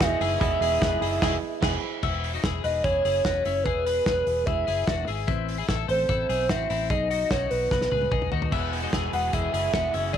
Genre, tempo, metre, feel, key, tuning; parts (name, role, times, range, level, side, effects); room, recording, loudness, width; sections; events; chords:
jangly indie pop; 148 BPM; 4/4; straight; E major; A4 = 438 Hz
hollow clarinet-like synth lead; melody; 0.0-10.2 s; B4 to F#5; -26 LUFS; right 1 dB; chorus, tape echo
crunchy overdriven guitar; accompaniment; 0.0-1.8, 8.5-10.2 s; E2 to G#4; -34 LUFS; right 13 dB
reed electric piano; accompaniment; 0.0-2.1 s; E4 to B5; -31 LUFS; right 13 dB
twelve-string electric guitar; arpeggios; 0.0-10.2 s; B3 to C5; -31 LUFS; left 14 dB
vintage muted fingered electric bass; bass; 0.0-10.2 s; E1 to D#2; -30 LUFS; equal
loose indie drum kit; drums; 0.0-10.2 s; crash cymbal, hi-hat, kick drum, snare drum, toms; -29 LUFS; equal
light reverb, small room ambience; 1960s-style stereo with parts hard left and right; -23 LUFS; side -9 dB against mid
0.0-2.0 A section; 2.0-10.2 B section
band accent 1.2-2.0; drum fill 7.7-8.5
0.0 Emaj7; 3.7 E7; 5.3 Am; 6.9 B; 8.5 E